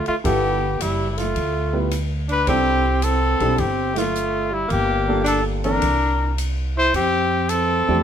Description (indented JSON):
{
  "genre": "jazz, small-group swing and bop",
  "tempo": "108 BPM",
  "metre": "4/4",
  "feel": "swing 68% on 8ths",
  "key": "unclear",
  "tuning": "A4 = 438 Hz",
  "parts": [
    { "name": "warm trumpet", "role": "melody", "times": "0.0-8.0 s", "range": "E4 to C5", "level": "-21 LUFS", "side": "left 3 dB", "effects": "none" },
    { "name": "breathy tenor saxophone", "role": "second line", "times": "0.0-8.0 s", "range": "G3 to E4", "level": "-25 LUFS", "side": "right 3 dB", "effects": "none" },
    { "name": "upright bass", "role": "bass", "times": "0.0-8.0 s", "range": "F#1 to F2", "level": "-24 LUFS", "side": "equal", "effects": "none" },
    { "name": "open jazz drum kit", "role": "drums", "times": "0.1-7.7 s", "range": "hi-hat, kick drum, ride cymbal, snare drum", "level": "-31 LUFS", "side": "left 1 dB", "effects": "none" },
    { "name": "warm grand piano", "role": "accompaniment", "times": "0.2-8.0 s", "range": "E3 to B4", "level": "-24 LUFS", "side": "right 2 dB", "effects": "none" }
  ],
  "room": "moderate studio reverb, RT60 0.6 s",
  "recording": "minimal, uncompressed stereo recording",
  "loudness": "-18 LUFS",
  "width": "side -9 dB against mid",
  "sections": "0.0-8.0 A section",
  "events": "band accent 3.9",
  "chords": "0.2 G13; 2.5 C69; 4.7 Gm9; 5.8 Csus2; 6.9 Fmaj13"
}